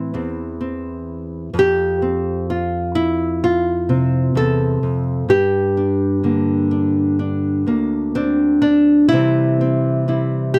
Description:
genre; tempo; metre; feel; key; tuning
folk, solo fingerstyle acoustic guitar; 64 BPM; 4/4; rubato; G dorian; A4 = 439 Hz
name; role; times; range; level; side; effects
nylon-string guitar; solo; 0.0-10.6 s; D2 to A4; -18 LUFS; equal; none
room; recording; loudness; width
light reverb; dry, close 1970s-style studio recording; -18 LUFS; mono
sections
0.0-9.1 A section; 9.1-10.6 B section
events
none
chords
0.0 Am (rootless); 1.5 F; 5.3 Gm; 9.1 C

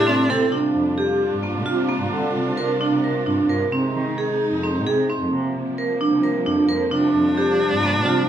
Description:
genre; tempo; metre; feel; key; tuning
contemporary instrumental, chamber music in an uneven meter; 262 BPM (eighths); 7/8; straight; unclear; A4 = 445 Hz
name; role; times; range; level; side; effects
clear viola; second line; 0.0-0.5, 6.9-8.3 s; C4 to D4; -23 LUFS; equal; none
warm symphonic string section; sustained chords; 0.0-8.3 s; C3 to F4; -26 LUFS; equal; none
muted cello; bass; 0.0-8.3 s; F2 to Eb3; -26 LUFS; equal; none
vibraphone with hard mallets; arpeggios; 0.1-8.2 s; Bb3 to Bb4; -20 LUFS; right 2 dB; none
room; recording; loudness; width
moderate recital hall reverb, RT60 1.5 s; minimal, uncompressed stereo recording; -18 LUFS; side -10 dB against mid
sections
0.5-8.3 A section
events
none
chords
0.0 C; 0.5 Bb6; 3.7 Ab/C; 5.3 Gm7/C

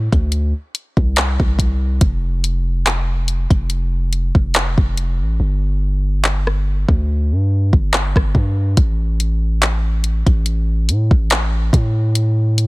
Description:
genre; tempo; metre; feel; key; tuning
contemporary R&B; 71 BPM; 4/4; swing 54% on 16ths; unclear; A4 = 440 Hz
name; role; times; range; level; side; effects
long sustained 808-style bass; bass; 0.0-12.7 s; F1 to A2; -17 LUFS; equal; none
smooth R&B drum kit; drums; 0.1-12.7 s; handclaps, hi-hat, kick drum, rim click; -16 LUFS; equal; none
room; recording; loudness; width
little or no reverb; dense, heavily limited modern master; -15 LUFS; side -22 dB against mid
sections
0.0-12.7 A section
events
hi-hats muted 5.4-8.8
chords
none

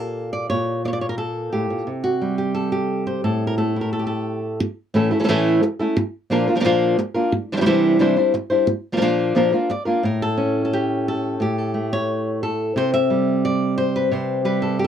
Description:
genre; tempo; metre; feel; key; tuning
flamenco; 177 BPM; 4/4; straight; unclear; A4 = 439 Hz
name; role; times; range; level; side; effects
flamenco guitar; solo; 0.0-14.9 s; A2 to E5; -18 LUFS; equal; none
room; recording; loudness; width
little or no reverb; dry, close 1970s-style studio recording; -18 LUFS; side -9 dB against mid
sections
0.0-4.6 A section; 4.6-10.0 B section; 10.0-14.9 C section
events
none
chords
0.0 A7b9; 1.9 C5; 3.2 A5; 4.6 A; 6.0 Bb; 7.3 Cadd9; 8.7 Bb; 10.0 A; 12.8 C

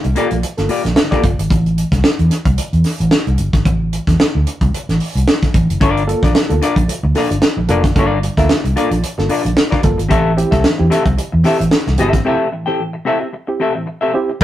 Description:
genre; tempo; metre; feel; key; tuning
funk; 112 BPM; 4/4; swing 56% on 16ths; unclear; A4 = 441 Hz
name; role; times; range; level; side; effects
semi-hollow electric guitar; accompaniment; 0.0-1.4, 5.8-14.3 s; Bb3 to G5; -18 LUFS; left 3 dB; none
reed electric piano; stabs; 0.0-1.3, 5.8-14.4 s; G2 to A4; -22 LUFS; right 2 dB; fast tremolo
vintage muted fingered electric bass; bass; 0.0-14.4 s; F1 to E2; -16 LUFS; equal; none
tight funk drum kit; drums; 0.0-14.4 s; crash cymbal, hi-hat, kick drum, snare drum; -16 LUFS; equal; none
room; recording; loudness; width
moderate studio reverb, RT60 0.6 s; rough rehearsal-room recording; -13 LUFS; side -13 dB against mid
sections
0.0-14.4 A section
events
break 12.3-14.4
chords
0.0 Gm7; 1.5 Am; 5.8 Gm7; 10.1 Am7

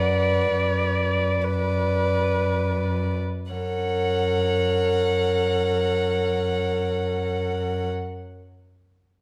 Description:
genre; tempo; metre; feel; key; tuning
classical, slow romantic movement for string quartet; free time; none; none; unclear; A4 = 436 Hz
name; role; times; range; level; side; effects
warm violin; melody; 0.0-7.9 s; F#5; -34 LUFS; equal; none
warm violin; second line; 0.0-7.9 s; B4 to D5; -32 LUFS; equal; none
dark viola; accompaniment; 0.0-7.9 s; A#4 to D5; -27 LUFS; equal; none
dark cello; bass; 0.0-7.9 s; F#2; -29 LUFS; equal; none
room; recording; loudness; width
moderate recital hall reverb, RT60 1.3 s; none; -24 LUFS; mono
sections
0.0-3.5 A section; 3.5-9.2 B section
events
slowing down 0.0-3.5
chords
0.0 Bm/F#; 3.5 F#

